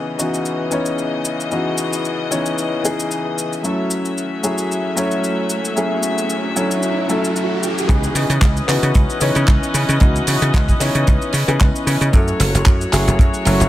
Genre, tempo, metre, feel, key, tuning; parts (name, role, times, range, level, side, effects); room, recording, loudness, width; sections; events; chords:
nu-disco, nu disco; 113 BPM; 4/4; swing 55% on 16ths; C# minor; A4 = 439 Hz
dark concert grand piano; accompaniment; 0.0-13.7 s; E3 to C#5; -20 LUFS; left 1 dB; sidechain pumping, tape echo
rich chamber string section; sustained chords; 0.0-13.7 s; C#3 to E5; -24 LUFS; left 2 dB; sidechain pumping
damped 70s drum kit; drums; 0.2-13.7 s; cabasa, handclaps, hi-hat; -23 LUFS; equal
riser; sound effects; 5.3-7.9 s; -27 LUFS; right 3 dB
dry thumbed slap bass; bass; 7.9-13.7 s; F#1 to C#3; -18 LUFS; equal
kick drum; drums; 7.9-13.3 s; -14 LUFS; equal
light reverb, small room reverb; -15 LUFS; side -14 dB against mid
0.0-7.9 A section; 7.9-13.7 B section
riser 5.3-7.9; drop 7.9-13.7
0.0 C#m9; 3.6 F#m7; 7.9 C#m9; 12.1 F#m7